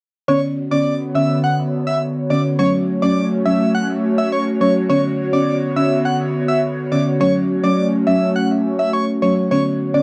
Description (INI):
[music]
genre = dancehall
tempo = 104 BPM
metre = 4/4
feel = straight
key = unclear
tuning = A4 = 441 Hz
[part]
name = soft struck synth lead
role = melody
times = 0.3-10.0 s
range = C#5 to F#5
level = -22 LUFS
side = equal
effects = chorus, analog delay
[part]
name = buzzing marimba with soft mallets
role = accompaniment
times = 0.3-10.0 s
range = D3 to C#4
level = -21 LUFS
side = equal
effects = cassette tape
[part]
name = airy breathy pad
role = sustained chords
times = 0.6-10.0 s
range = D3 to C#5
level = -23 LUFS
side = equal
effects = chorus, cassette tape
[sound]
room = wet booth ambience, RT60 0.2 s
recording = home recording on cassette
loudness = -18 LUFS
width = mono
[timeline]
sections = 0.3-10.0 A section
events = none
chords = 0.3 Bmadd9; 2.6 F#m; 4.9 Bmadd9; 7.2 F#m; 9.5 Bmadd9